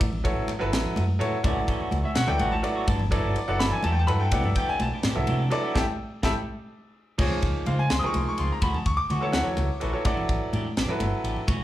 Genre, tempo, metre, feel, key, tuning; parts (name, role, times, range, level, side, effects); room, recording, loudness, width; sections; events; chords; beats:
electric jazz fusion; 84 BPM (dotted quarters); 6/8; straight; A mixolydian; A4 = 440 Hz
bright grand piano; accompaniment; 0.0-11.5 s; E#3 to D#6; -27 LUFS; equal; plate reverb, slapback echo
fingered electric bass; bass; 0.0-11.6 s; F#1 to D3; -27 LUFS; equal
crisp fusion drum kit; drums; 0.0-11.6 s; crash cymbal, kick drum, ride cymbal, snare drum; -29 LUFS; equal
congas; percussion; 0.0-11.6 s; -34 LUFS; right 1 dB
clean electric guitar; stabs; 1.4-11.6 s; D#3 to A4; -34 LUFS; right 1 dB; lush chorus, plate reverb, slapback echo
light reverb; live gig heard through the venue's PA, club reverb; -23 LUFS; side -14 dB against mid
0.0-7.2 A section; 7.2-11.6 A section
band accent 5.8-7.2; drum fill 6.5-7.2
0.0 A; 1.5 Dmaj9; 2.9 Gmaj9; 4.3 Cmaj9; 5.8 A7(no3); 7.2 C#maj9; 8.6 Dmaj9; 10.1 A9sus4
| 0.02 0.73 | 1.45 2.17 | 2.89 3.60 | 4.32 5.04 | 5.76 6.47 | 7.19 7.91 | 8.62 9.34 | 10.06 10.77 | 11.49